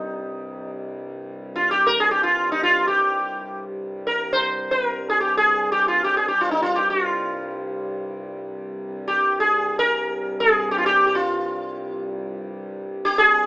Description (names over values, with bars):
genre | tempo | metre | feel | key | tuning
indian classical, Hindustani | free time | none | none | C raga bhairavi | A4 = 438 Hz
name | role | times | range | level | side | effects
sitar | melody | 0.0-13.5 s | Eb4 to C5 | -18 LUFS | equal | none
pedal harmonium | drone | 0.0-13.5 s | C2 to G2 | -30 LUFS | equal | none
room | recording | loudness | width
moderate small room reverb, RT60 0.5 s | rough home demo mix, AM radio sound | -18 LUFS | side -23 dB against mid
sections
0.0-13.5 A section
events
none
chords
none